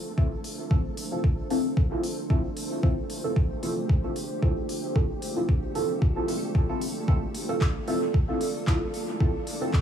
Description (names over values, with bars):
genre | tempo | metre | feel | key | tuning
dub techno | 113 BPM | 4/4 | swing 55% on 16ths | D minor | A4 = 440 Hz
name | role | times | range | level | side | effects
deep dark ambient pad | sustained chords | 0.0-9.8 s | D4 to D5 | -35 LUFS | equal | chorus, built-in reverb, sidechain pumping
flickering grainy texture | texture | 0.0-9.8 s | A3 to A4 | -38 LUFS | right 2 dB | built-in reverb, sidechain pumping
deep mellow chord stab | stabs | 0.2-9.7 s | C4 to A4 | -30 LUFS | equal | chorus, phaser, sidechain pumping, dub echo
electronic kick drum | drums | 0.2-9.8 s | none | -24 LUFS | equal | none
deep house drum kit | drums | 0.4-9.8 s | handclaps, hi-hat | -38 LUFS | left 1 dB | dub echo
room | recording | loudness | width
digital ambience | small room ambience | -24 LUFS | side -9 dB against mid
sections
0.0-9.8 A section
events
filter sweep on synth stab 0.0-9.8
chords
0.0 Dm7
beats
0.18 | 0.71 1.24 1.77 2.30 | 2.83 3.36 3.89 4.42 | 4.96 5.49 6.02 6.55 | 7.08 7.61 8.14 8.67 | 9.20 9.73